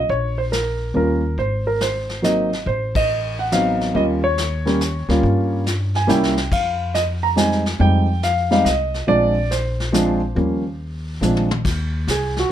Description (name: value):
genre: jazz piano trio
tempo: 140 BPM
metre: 3/4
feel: swing 67% on 8ths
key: Eb mixolydian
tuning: A4 = 441 Hz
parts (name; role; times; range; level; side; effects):
- warm concert grand piano; melody; 0.0-12.5 s; F3 to Bb5; -19 LUFS; right 1 dB; none
- upright bass; bass; 0.0-12.5 s; Ab1 to G2; -23 LUFS; equal; none
- vintage brush drum kit; drums; 0.1-12.5 s; brushed snare drum, crash cymbal, hi-hat, kick drum, ride cymbal, snare drum, toms; -26 LUFS; left 2 dB; none
room: moderate club reverb, RT60 0.5 s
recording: none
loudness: -17 LUFS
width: side -10 dB against mid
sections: 0.0-11.6 A section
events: band accent 2.9; drum fill 6.1-6.5, 11.2-11.6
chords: 0.1 Bbm; 0.9 Eb9; 1.4 Ab9; 2.7 Adim7; 4.0 Eb9; 5.2 Gm7b5; 6.1 C7b9; 6.5 Fm7; 9.1 Bb9; 10.4 Eb9; 11.2 Bb9; 11.6 N.C.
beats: | 0.09 0.52 0.95 | 1.38 1.81 2.24 | 2.67 3.09 3.52 | 3.95 4.38 4.81 | 5.23 5.66 6.09 | 6.52 6.95 7.37 | 7.80 8.23 8.66 | 9.08 9.51 9.94 | 10.37 10.79 11.22 | 11.65 12.08 12.50